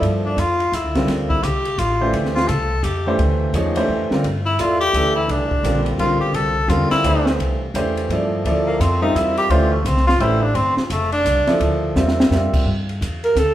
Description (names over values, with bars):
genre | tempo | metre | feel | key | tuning
modal jazz | 171 BPM | 3/4 | swing 62% on 8ths | G dorian | A4 = 440 Hz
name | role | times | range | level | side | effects
bright tenor saxophone | second line | 0.0-11.6 s | F3 to A4 | -20 LUFS | left 1 dB | none
clear grand piano | accompaniment | 0.0-12.7 s | D3 to E5 | -21 LUFS | right 1 dB | none
upright bass | bass | 0.0-13.5 s | F1 to G2 | -22 LUFS | equal | none
compact cocktail drum kit | drums | 0.0-13.5 s | crash cymbal, hi-hat, kick drum, ride cymbal, snare drum | -26 LUFS | equal | none
breathy alto saxophone | melody | 13.2-13.5 s | A4 to Bb4 | -15 LUFS | right 2 dB | none
room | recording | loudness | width
wet large studio reverb, RT60 1.1 s | band playing live in one room | -16 LUFS | side -13 dB against mid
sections
0.0-12.7 A section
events
tenor saxophone solo 0.0-12.7; drum fill 12.0-12.3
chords
0.0 G13sus4; 12.7 G5